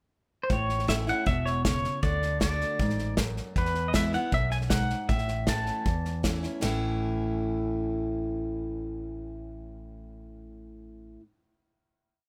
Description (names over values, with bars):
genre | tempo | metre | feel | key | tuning
honky-tonk and classic country | 156 BPM | 4/4 | straight | A major | A4 = 441 Hz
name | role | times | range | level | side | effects
pedal steel guitar | melody | 0.4-6.2 s | B4 to A5 | -32 LUFS | equal | none
picked steel-string acoustic guitar | accompaniment | 0.5-11.2 s | E2 to F#4 | -35 LUFS | equal | none
fretless electric bass | bass | 0.5-11.2 s | E1 to E2 | -35 LUFS | equal | none
natural country drum kit | drums | 0.5-6.7 s | hi-hat, kick drum, ride cymbal, snare drum | -32 LUFS | equal | none
room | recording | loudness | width
light reverb | none | -28 LUFS | mono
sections
0.0-0.5 pickup bar; 0.5-6.6 interlude; 6.6-9.7 final chord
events
none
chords
0.0 N.C.; 0.5 A; 2.0 D; 3.6 E; 5.1 A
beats
0.12 | 0.50 0.88 1.26 1.65 | 2.03 2.41 2.80 3.18 | 3.56 3.94 4.33 4.71 | 5.09 5.48 5.86 6.25 | 6.63 7.01 7.40 7.78 | 8.17 8.55 8.93 9.32